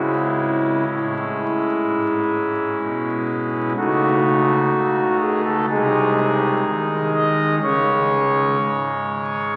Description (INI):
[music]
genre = classical, chorale-style piece for pipe organ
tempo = 62 BPM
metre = 4/4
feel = straight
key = C# minor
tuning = A4 = 440 Hz
[part]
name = pipe organ, foundations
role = solo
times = 0.0-9.5 s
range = B#1 to D#5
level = -20 LUFS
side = equal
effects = none
[sound]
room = wet cathedral reverb, RT60 4.6 s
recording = very old 78 rpm record, vinyl crackle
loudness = -20 LUFS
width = mono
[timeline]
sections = 0.0-9.6 A section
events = none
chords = 0.0 C#m; 3.8 D#m7b5/C#; 5.7 G#/B#; 7.6 C#5